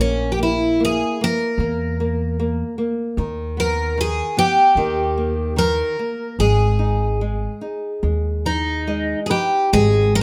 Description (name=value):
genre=fado-style ballad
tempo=70-76 BPM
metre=4/4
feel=rubato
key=G# harmonic minor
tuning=A4 = 440 Hz
part: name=picked twelve-string acoustic guitar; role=melody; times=0.0-10.2 s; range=C#4 to A#4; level=-22 LUFS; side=equal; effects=none
part: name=nylon-string guitar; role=accompaniment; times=0.0-10.2 s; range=D#3 to D#5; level=-26 LUFS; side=equal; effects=none
part: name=upright bass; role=bass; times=0.0-10.2 s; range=G#1 to E2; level=-24 LUFS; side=equal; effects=none
room=light reverb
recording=none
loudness=-20 LUFS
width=mono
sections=0.0-9.7 A section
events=nylon-string guitar fill 8.4-9.7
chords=0.0 A#(b5, no3); 3.2 D#aug; 4.8 D#; 6.4 G#5; 9.7 N.C.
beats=0.79 1.59 2.38 | 3.17 3.96 4.76 5.57 | 6.38 7.19 8.02 8.87 | 9.72